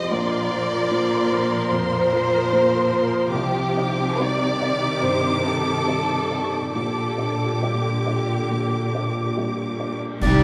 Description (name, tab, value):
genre	cinematic, emotional film score for orchestra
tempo	67-75 BPM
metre	4/4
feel	rubato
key	unclear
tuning	A4 = 440 Hz
part	dark symphonic violin section	melody	0.0-10.4 s	G4 to D6	-31 LUFS	equal	none
part	warm symphonic violin section	second line	0.0-9.4 s	G4 to Eb5	-28 LUFS	equal	none
part	felt-muted upright piano	accompaniment	0.0-10.4 s	Bb1 to D5	-28 LUFS	equal	none
part	warm symphonic viola section	accompaniment	0.0-10.4 s	D3 to D5	-30 LUFS	equal	none
part	warm symphonic cello section	bass	0.0-10.4 s	F2 to G3	-29 LUFS	equal	none
part	cymbal swell, clash cymbals and concert bass drum	percussion	6.7-10.4 s	none	-32 LUFS	equal	none
part	dark clarinet	second line	10.2-10.4 s	Eb4	-24 LUFS	equal	none
part	warm oboe	second line	10.2-10.4 s	D5	-25 LUFS	equal	none
part	rich symphonic double bass section	bass	10.2-10.4 s	C2	-22 LUFS	equal	none
room	wet recital hall reverb, RT60 1.7 s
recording	recorded in a church or concert hall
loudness	-22 LUFS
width	mono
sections	0.0-10.2 A section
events	band accent 10.2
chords	0.1 Bbadd9; 3.3 Cmadd9; 6.8 Gm/Bb